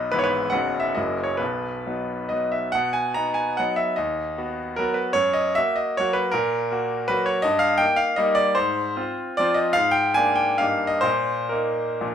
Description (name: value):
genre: classical, romantic triple-time dance for piano with dotted rhythms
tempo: 120-172 BPM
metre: 3/4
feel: rubato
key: B major, Eb major from 7.5 s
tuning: A4 = 439 Hz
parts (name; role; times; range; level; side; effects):
- bright grand piano; solo; 0.0-12.1 s; F#1 to A#5; -20 LUFS; equal; none
room: light reverb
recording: minimal, uncompressed stereo recording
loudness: -20 LUFS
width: side -8 dB against mid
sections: 0.0-2.7 A section; 2.7-12.1 B section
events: none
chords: 0.1 E/G#; 0.5 B/F#; 1.0 F#7; 1.4 B; 4.0 B/D#; 5.2 F#; 6.3 F#/A#; 7.5 Eb/G; 8.6 Fm/Ab; 9.8 Bb7/Ab; 10.6 Eb/G; 11.1 Eb5/Bb